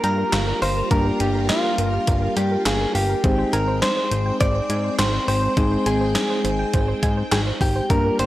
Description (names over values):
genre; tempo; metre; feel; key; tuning
synth-pop; 103 BPM; 4/4; straight; unclear; A4 = 439 Hz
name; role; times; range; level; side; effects
direct-recorded clean electric guitar; melody; 0.0-8.3 s; F4 to D5; -24 LUFS; equal; none
soft electric-piano-like synth keys; accompaniment; 0.0-8.3 s; G3 to Ab4; -26 LUFS; left 1 dB; chorus
string machine, violins; sustained chords; 0.0-8.3 s; G3 to G5; -30 LUFS; equal; ensemble chorus
soft round pluck; arpeggios; 0.0-8.3 s; Bb4 to Ab5; -31 LUFS; right 2 dB; chorus, tape echo
fat analog bass; bass; 0.0-8.3 s; G1 to Ab2; -23 LUFS; equal; none
gated 80s digital drum machine; drums; 0.0-8.3 s; handclaps, hi-hat, kick drum, snare drum; -23 LUFS; equal; gated reverb, gated reverb snare, overdrive
room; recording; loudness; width
digital ambience; dry, gritty hardware recording, transformer saturation; -18 LUFS; side -15 dB against mid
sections
0.0-8.3 A section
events
none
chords
0.0 Gm7; 3.2 Abmaj7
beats
0.33 | 0.91 1.49 2.08 2.66 | 3.24 3.82 4.41 4.99 | 5.57 6.15 6.74 7.32 | 7.90